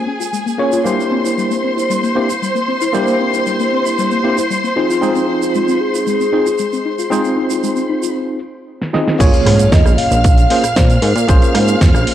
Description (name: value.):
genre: nu-disco, nu disco.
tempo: 115 BPM.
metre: 4/4.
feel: straight.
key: Bb minor.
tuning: A4 = 441 Hz.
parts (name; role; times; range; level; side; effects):
soft octave-layered synth lead; melody; 0.0-0.6, 4.8-12.1 s; F4 to F5; -19 LUFS; equal; chorus, phaser, cassette tape, tape echo.
tine electric piano; accompaniment; 0.0-12.1 s; Bb3 to Eb5; -18 LUFS; right 1 dB; overdrive, fast stereo tremolo, sidechain pumping, low-pass filter, analog delay.
warm studio string section; sustained chords; 0.0-12.1 s; Ab4 to F6; -20 LUFS; equal; sidechain pumping.
soft round pluck; arpeggios; 0.1-8.1 s; G3 to F4; -21 LUFS; left 6 dB; chorus, cassette tape, sidechain pumping, tape echo.
tube shaker; percussion; 0.2-12.0 s; none; -30 LUFS; right 13 dB; none.
pop drum kit; drums; 8.8-12.1 s; crash cymbal, hi-hat, rim click, snare drum; -20 LUFS; equal; low-pass filter on snare, cassette tape, low-pass filter on hats, low-pass filter on cymbals.
chorused synth bass; bass; 9.2-12.1 s; Bb1 to Bb2; -14 LUFS; right 1 dB; none.
electronic kick drum; drums; 9.2-11.9 s; none; -12 LUFS; equal; cassette tape.
impact; sound effects; 9.2-11.3 s; none; -24 LUFS; equal; none.
room: moderate spring reverb, RT60 2.7 s.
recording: home recording on cassette.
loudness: -12 LUFS.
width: side -11 dB against mid.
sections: 0.0-9.2 A section; 9.2-12.1 B section.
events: filter sweep on synth arpeggio sound 0.0-9.2; break 8.2-9.2; drum fill 8.8-9.2; drop 9.2-12.1; impact 9.2-11.3.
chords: 0.0 Bbm7; 0.9 C7; 4.8 Fm7; 9.2 Bbm7.